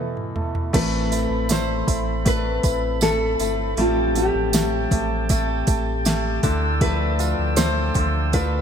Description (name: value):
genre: pop ballad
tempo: 79 BPM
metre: 4/4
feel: straight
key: A minor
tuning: A4 = 444 Hz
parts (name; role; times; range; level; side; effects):
- bright concert grand piano; accompaniment; 0.0-8.6 s; E2 to F4; -28 LUFS; right 4 dB; none
- tonewheel organ; sustained chords; 0.0-8.6 s; B2 to E6; -29 LUFS; equal; slow rotary speaker
- picked steel-string acoustic guitar; arpeggios; 0.0-8.6 s; A2 to B4; -29 LUFS; left 7 dB; ping-pong delay
- smooth R&B drum kit; drums; 0.2-8.5 s; crash cymbal, hi-hat, kick drum, snare drum, toms; -24 LUFS; equal; overdrive
- sub bass with octave; bass; 0.7-8.6 s; G1 to D2; -25 LUFS; equal; none
- nylon-string guitar; melody; 0.8-8.6 s; F4 to C5; -25 LUFS; left 1 dB; lush chorus, ping-pong delay
- tambourine; percussion; 1.1-8.5 s; none; -33 LUFS; right 10 dB; none
room: light reverb, small room ambience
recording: none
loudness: -19 LUFS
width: side -8 dB against mid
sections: 0.7-8.6 A section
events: drum fill 0.0-0.7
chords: 0.0 Esus4; 0.7 Amadd9; 3.8 Fadd9/A; 6.4 Dmadd9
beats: | 0.74 1.50 2.26 3.02 | 3.78 4.54 5.29 6.05 | 6.81 7.57 8.33